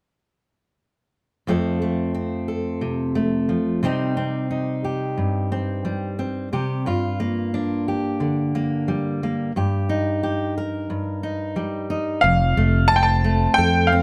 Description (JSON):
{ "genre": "folk", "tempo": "89 BPM", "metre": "4/4", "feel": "straight", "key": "F mixolydian", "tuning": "A4 = 440 Hz", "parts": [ { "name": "fingerpicked steel-string acoustic guitar", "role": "accompaniment", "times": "1.5-14.0 s", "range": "F2 to Bb4", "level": "-24 LUFS", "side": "equal", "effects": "none" }, { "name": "bright upright piano", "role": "melody", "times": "12.2-14.0 s", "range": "F5 to A5", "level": "-20 LUFS", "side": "equal", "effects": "none" }, { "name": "fingered electric bass", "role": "bass", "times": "12.2-14.0 s", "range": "F1 to F2", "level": "-22 LUFS", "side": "equal", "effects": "none" } ], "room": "light reverb", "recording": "none", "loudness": "-22 LUFS", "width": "mono", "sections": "1.5-12.2 A section; 12.2-14.0 B section", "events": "none", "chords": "1.5 F; 3.8 Cm; 6.9 Gm7; 9.5 Eb/G; 12.2 F" }